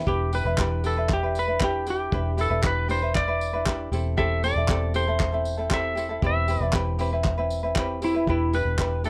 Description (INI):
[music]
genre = acoustic pop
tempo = 117 BPM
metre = 4/4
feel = straight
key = unclear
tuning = A4 = 440 Hz
[part]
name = ukulele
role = accompaniment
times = 0.0-9.1 s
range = C4 to B4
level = -30 LUFS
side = equal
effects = none
[part]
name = vintage muted fingered electric bass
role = bass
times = 0.0-9.1 s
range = E1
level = -30 LUFS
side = equal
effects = none
[part]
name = clean lap steel guitar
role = melody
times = 0.1-9.1 s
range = E4 to E5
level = -29 LUFS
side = equal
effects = none
[part]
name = cloth-damped thuddy drum kit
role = drums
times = 0.1-9.1 s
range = handclaps, kick drum, tambourine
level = -30 LUFS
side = equal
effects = none
[sound]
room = light reverb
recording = close, detailed microphones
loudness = -25 LUFS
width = mono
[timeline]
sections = 0.0-8.3 A section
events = none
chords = 0.1 G6/E; 3.9 Am7/E; 6.2 Cmaj7/E; 8.3 G6/E